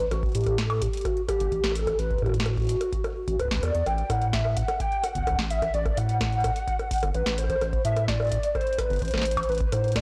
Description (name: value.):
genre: IDM.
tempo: 128 BPM.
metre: 4/4.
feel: straight.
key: unclear.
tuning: A4 = 441 Hz.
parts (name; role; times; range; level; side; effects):
warbly nostalgic lead; melody; 0.0-10.0 s; F#4 to G5; -30 LUFS; equal; ensemble chorus, digital delay.
round analog bass; bass; 0.0-10.0 s; G1 to A2; -30 LUFS; equal; none.
booming analog drum machine; drums; 0.0-10.0 s; bongos, hi-hat, snare drum; -35 LUFS; equal; overdrive.
electronic kick drum; drums; 0.0-10.0 s; none; -34 LUFS; equal; overdrive.
room: light reverb.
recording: blown-out, overdriven recording, overdrive.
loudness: -26 LUFS.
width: mono.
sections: 0.0-10.0 A section.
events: none.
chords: 0.0 Gsus2; 2.0 D6/A; 3.9 Gmaj7sus2 (rootless); 9.5 Amadd9.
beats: | 0.11 0.58 1.05 1.52 | 1.99 2.46 2.93 3.40 | 3.86 4.33 4.80 5.27 | 5.74 6.21 6.68 7.14 | 7.61 8.08 8.55 9.02 | 9.49 9.96.